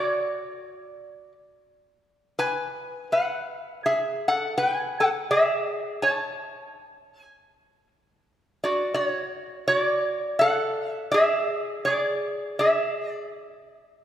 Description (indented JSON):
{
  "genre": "hawaiian",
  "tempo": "82 BPM",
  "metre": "4/4",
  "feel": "swing 59% on 8ths",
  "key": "A major, D major from 8.2 s",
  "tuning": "A4 = 438 Hz",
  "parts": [
    { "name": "lap resonator guitar", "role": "solo", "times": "0.0-13.3 s", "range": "F#4 to A5", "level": "-23 LUFS", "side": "equal", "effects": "none" }
  ],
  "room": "wet scoring stage reverb, RT60 2.2 s",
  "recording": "recorded in a church or concert hall",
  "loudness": "-23 LUFS",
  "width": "side -11 dB against mid",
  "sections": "0.0-8.2 A section; 8.2-14.0 B section",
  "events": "none",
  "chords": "0.0 D; 2.4 G#m7; 5.3 Amaj7; 8.2 Dmaj7; 11.1 N.C.",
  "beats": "0.19 0.92 1.65 | 2.38 3.10 3.83 4.56 | 5.29 6.02 6.75 7.48 | 8.21 8.94 9.67 10.40 | 11.13 11.86 12.59"
}